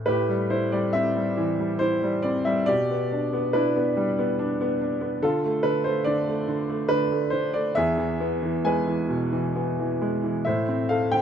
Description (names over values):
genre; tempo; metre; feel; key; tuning
classical, lyrical solo piano; 65-72 BPM; 3/4; rubato; A minor; A4 = 441 Hz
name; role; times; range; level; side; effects
clear baby grand piano; solo; 0.0-11.2 s; E2 to G#5; -22 LUFS; equal; none
room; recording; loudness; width
little or no reverb; close, detailed microphones; -22 LUFS; side -8 dB against mid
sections
0.1-11.2 A section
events
none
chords
0.1 Am7; 2.7 G6/B; 5.2 Dm; 7.8 E; 10.5 Am